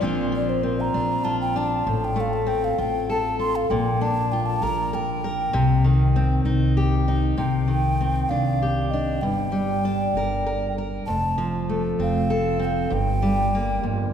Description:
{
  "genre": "acoustic folk duo or small band",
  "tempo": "65 BPM (dotted quarters)",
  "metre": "6/8",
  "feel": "straight",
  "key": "C dorian",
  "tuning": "A4 = 440 Hz",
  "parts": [
    { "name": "fingerpicked steel-string acoustic guitar", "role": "accompaniment", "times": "0.0-14.1 s", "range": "F2 to Bb4", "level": "-24 LUFS", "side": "left 2 dB", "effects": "none" },
    { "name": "upright bass", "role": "bass", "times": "0.0-14.1 s", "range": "F1 to C2", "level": "-24 LUFS", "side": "equal", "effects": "none" },
    { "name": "breathy mellow alto ocarina", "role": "melody", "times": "0.4-13.8 s", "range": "Bb4 to C6", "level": "-26 LUFS", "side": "right 1 dB", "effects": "none" }
  ],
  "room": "wet concert hall reverb, RT60 2.1 s",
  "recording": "recorded in a church or concert hall",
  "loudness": "-20 LUFS",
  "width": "side -8 dB against mid",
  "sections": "0.0-7.4 A section; 7.4-14.1 B section",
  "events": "ocarina solo 0.0-7.4",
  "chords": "0.0 Bbadd9; 1.9 F/A; 3.7 Bb; 5.5 Cm; 7.4 Cmadd9; 9.2 Gm; 11.1 F; 12.9 Gm"
}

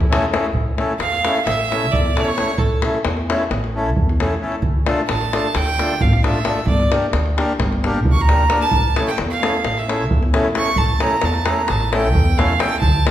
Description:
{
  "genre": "balkan folk, Balkan wedding band",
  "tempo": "264 BPM (eighths)",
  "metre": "9/8",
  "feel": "straight",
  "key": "A phrygian dominant",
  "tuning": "A4 = 440 Hz",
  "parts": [
    { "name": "bright violin", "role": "second line", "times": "0.0-13.1 s", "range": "E4 to C#6", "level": "-21 LUFS", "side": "right 3 dB", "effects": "none" },
    { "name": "davul", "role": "percussion", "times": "0.0-13.1 s", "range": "none", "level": "-20 LUFS", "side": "equal", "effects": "none" },
    { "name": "accordion", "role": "accompaniment", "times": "0.1-13.1 s", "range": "A3 to Bb4", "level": "-22 LUFS", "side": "left 1 dB", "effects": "none" },
    { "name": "upright bass", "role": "bass", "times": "0.5-13.0 s", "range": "G1 to E2", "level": "-22 LUFS", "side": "equal", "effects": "none" }
  ],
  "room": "wet recital hall reverb, RT60 1.4 s",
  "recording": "recorded in a church or concert hall",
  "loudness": "-16 LUFS",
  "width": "side -12 dB against mid",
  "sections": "0.5-13.1 A section",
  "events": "violin solo 0.5-13.1",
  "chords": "0.0 A; 4.6 Dm; 6.7 Gm; 8.7 A"
}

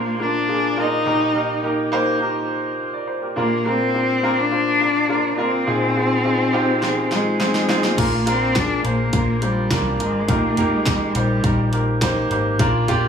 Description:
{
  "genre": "piano-driven pop",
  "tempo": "104 BPM",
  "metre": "4/4",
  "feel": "straight",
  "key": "Bb mixolydian",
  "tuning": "A4 = 440 Hz",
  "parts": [
    { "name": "warm cello", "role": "melody", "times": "0.0-11.7 s", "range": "G3 to Eb4", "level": "-21 LUFS", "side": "left 2 dB", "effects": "tape echo" },
    { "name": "clear concert grand piano", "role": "accompaniment", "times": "0.0-13.1 s", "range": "Bb1 to D5", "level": "-21 LUFS", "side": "equal", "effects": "none" },
    { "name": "pop drum kit", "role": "drums", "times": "6.8-13.0 s", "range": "crash cymbal, hi-hat, kick drum, snare drum, toms", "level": "-22 LUFS", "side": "right 1 dB", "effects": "none" },
    { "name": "vintage muted fingered electric bass", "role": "bass", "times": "8.0-13.1 s", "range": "Ab1 to C2", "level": "-23 LUFS", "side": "left 1 dB", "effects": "none" }
  ],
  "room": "moderate large studio reverb, RT60 1.1 s",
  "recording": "studio reverb",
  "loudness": "-17 LUFS",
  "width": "side -7 dB against mid",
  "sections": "0.0-8.0 A section; 8.0-13.1 B section",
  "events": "drum fill 6.8-8.0",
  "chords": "0.0 Bb; 1.1 Eb/Bb; 3.4 Bb; 5.7 Fm7/Bb; 8.0 Bb; 10.3 Eb/Bb"
}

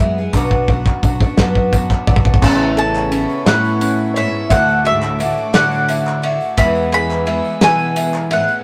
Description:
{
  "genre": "indie folk with a building arrangement",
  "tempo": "58 BPM (dotted quarters)",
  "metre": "6/8",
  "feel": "straight",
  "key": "A major",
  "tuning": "A4 = 439 Hz",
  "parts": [
    { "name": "picked twelve-string acoustic guitar", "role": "accompaniment", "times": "0.0-8.6 s", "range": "E2 to G#4", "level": "-24 LUFS", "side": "equal", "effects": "none" },
    { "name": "warm upright piano", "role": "arpeggios", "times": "0.0-8.6 s", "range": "C#4 to E5", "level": "-24 LUFS", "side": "equal", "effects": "none" },
    { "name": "fingered electric bass", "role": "bass", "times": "0.0-8.4 s", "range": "A1 to E3", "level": "-25 LUFS", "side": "equal", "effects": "none" },
    { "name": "group handclap", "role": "percussion", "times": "0.0-8.3 s", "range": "none", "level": "-32 LUFS", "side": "equal", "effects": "none" },
    { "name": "cloth-damped thuddy drum kit", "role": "drums", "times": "0.3-8.5 s", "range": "crash cymbal, kick drum, ride cymbal, snare drum", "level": "-19 LUFS", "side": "equal", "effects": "none" },
    { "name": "tambourine", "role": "percussion", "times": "0.3-8.6 s", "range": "none", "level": "-41 LUFS", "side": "equal", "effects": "none" },
    { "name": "mandolin", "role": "melody", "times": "2.4-8.6 s", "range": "E5 to B5", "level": "-20 LUFS", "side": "equal", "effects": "none" },
    { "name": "warm cello", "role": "second line", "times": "2.4-8.6 s", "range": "G#2 to E3", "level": "-28 LUFS", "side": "equal", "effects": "none" },
    { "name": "warm chamber string section", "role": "sustained chords", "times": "2.4-8.6 s", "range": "A4 to E6", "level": "-33 LUFS", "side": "equal", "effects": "none" }
  ],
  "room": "moderate booth ambience, RT60 0.3 s",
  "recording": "rough rehearsal-room recording",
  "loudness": "-15 LUFS",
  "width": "mono",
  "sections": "0.0-2.4 A section; 2.4-8.6 B section",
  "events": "build-up 0.0-2.4; drum fill 0.0-2.4",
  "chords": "0.3 Bm; 2.4 Aadd9; 4.5 Dadd9; 6.6 E"
}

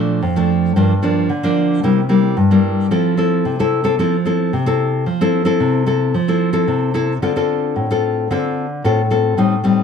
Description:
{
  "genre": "samba",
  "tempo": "111 BPM",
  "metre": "4/4",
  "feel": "straight",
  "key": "F major",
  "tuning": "A4 = 438 Hz",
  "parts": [
    { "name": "nylon-string guitar", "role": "solo", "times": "0.0-9.8 s", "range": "F2 to A4", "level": "-14 LUFS", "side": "left 1 dB", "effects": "none" }
  ],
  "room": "moderate studio reverb, RT60 0.9 s",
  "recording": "dark, warm production",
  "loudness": "-14 LUFS",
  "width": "side -7 dB against mid",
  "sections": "0.0-7.2 A section; 7.2-9.8 B section",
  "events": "none",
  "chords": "0.0 Bbmaj7; 0.8 Gm7; 1.8 C7; 2.9 Fmaj7; 7.2 Dm7"
}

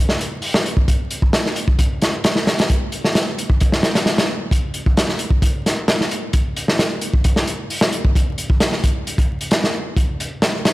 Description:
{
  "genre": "breakbeat",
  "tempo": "132 BPM",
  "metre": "4/4",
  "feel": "straight",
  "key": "none",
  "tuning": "none",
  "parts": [
    { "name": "crunchy breakbeat drum kit", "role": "drums", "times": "0.1-10.7 s", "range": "hi-hat, kick drum, snare drum", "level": "-16 LUFS", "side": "equal", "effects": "none" }
  ],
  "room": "little or no reverb",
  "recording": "vinyl crackle",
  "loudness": "-16 LUFS",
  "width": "side -18 dB against mid",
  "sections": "0.0-10.7 A section",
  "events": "none",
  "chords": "none"
}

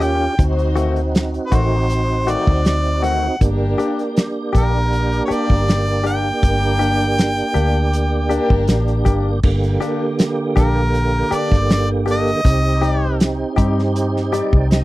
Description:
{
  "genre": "straight-eighth soul blues",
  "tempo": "80 BPM",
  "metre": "4/4",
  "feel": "straight",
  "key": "G minor",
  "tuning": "A4 = 444 Hz",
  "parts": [
    { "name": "bright harmonica", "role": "melody", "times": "0.0-13.2 s", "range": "Bb4 to G5", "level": "-22 LUFS", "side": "equal", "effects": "overdrive" },
    { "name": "tonewheel organ", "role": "accompaniment", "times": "0.0-14.8 s", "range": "D3 to Eb5", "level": "-22 LUFS", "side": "right 3 dB", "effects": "slow rotary speaker, overdrive, chorus vibrato" },
    { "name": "direct-recorded clean electric guitar", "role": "stabs", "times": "0.0-14.6 s", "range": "Eb3 to G4", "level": "-22 LUFS", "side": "left 5 dB", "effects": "analog chorus" },
    { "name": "vintage muted fingered electric bass", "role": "bass", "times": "0.0-14.8 s", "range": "G1 to G2", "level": "-19 LUFS", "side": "equal", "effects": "none" },
    { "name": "warm soul drum kit", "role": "drums", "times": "0.0-14.8 s", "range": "crash cymbal, hi-hat, kick drum, snare drum", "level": "-17 LUFS", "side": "equal", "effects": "none" },
    { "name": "dark chamber string section", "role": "sustained chords", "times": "0.4-8.9 s", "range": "D4 to C5", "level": "-28 LUFS", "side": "left 3 dB", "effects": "none" }
  ],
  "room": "little or no reverb",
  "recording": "dry, close 1970s-style studio recording",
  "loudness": "-15 LUFS",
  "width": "side -17 dB against mid",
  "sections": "0.0-9.4 A section; 9.4-14.8 A section",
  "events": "tonewheel organ fill 14.0-14.8",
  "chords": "0.4 D7b9; 3.4 Gm; 12.5 Cm"
}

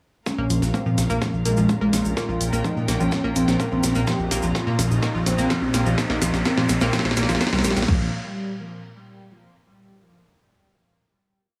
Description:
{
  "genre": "melodic techno",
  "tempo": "126 BPM",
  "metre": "4/4",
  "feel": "straight",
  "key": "Bb dorian",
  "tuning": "A4 = 438 Hz",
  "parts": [
    { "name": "unison lead", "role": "melody", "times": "0.3-8.1 s", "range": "F3 to G4", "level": "-28 LUFS", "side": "equal", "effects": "sidechain pumping, tape echo" },
    { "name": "muted studio string section", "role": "sustained chords", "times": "0.3-8.1 s", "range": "Bb3 to Bb5", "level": "-37 LUFS", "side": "equal", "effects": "sidechain pumping" },
    { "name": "swarming drone", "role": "drone", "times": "1.1-7.9 s", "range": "Bb2", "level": "-38 LUFS", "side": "equal", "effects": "none" },
    { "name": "electronic kick drum", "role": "drums", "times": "0.3-8.0 s", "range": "none", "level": "-29 LUFS", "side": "equal", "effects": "high-pass filter on kick, high-pass filter on room" },
    { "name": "house drum kit", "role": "drums", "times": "0.3-8.0 s", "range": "crash cymbal, hi-hat, snare drum", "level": "-29 LUFS", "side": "equal", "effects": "none" },
    { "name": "cabasa", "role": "percussion", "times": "0.3-7.9 s", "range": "none", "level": "-36 LUFS", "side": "equal", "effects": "none" },
    { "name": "riser", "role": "sound effects", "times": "3.6-7.9 s", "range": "none", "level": "-36 LUFS", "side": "equal", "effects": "none" },
    { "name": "analog pluck", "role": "arpeggios", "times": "0.4-8.1 s", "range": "F3 to C5", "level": "-29 LUFS", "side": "equal", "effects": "chorus, sidechain pumping, analog delay" },
    { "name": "dark detuned saw bass", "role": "bass", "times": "0.4-8.1 s", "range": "Bb1 to Bb2", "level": "-27 LUFS", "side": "equal", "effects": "sidechain pumping" }
  ],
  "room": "moderate spring reverb, RT60 1.4 s, digital ambience",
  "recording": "echo-heavy mix, small room ambience",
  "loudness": "-22 LUFS",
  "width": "mono",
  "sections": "0.3-7.9 build; 7.9-9.8 final chord",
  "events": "build-up 0.3-7.9; drum fill 0.3-7.9; filter sweep on analog synth lead 0.3-7.9; riser 3.6-7.9",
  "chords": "0.3 Bbm; 4.1 Cm7/Bb; 7.9 Bb5"
}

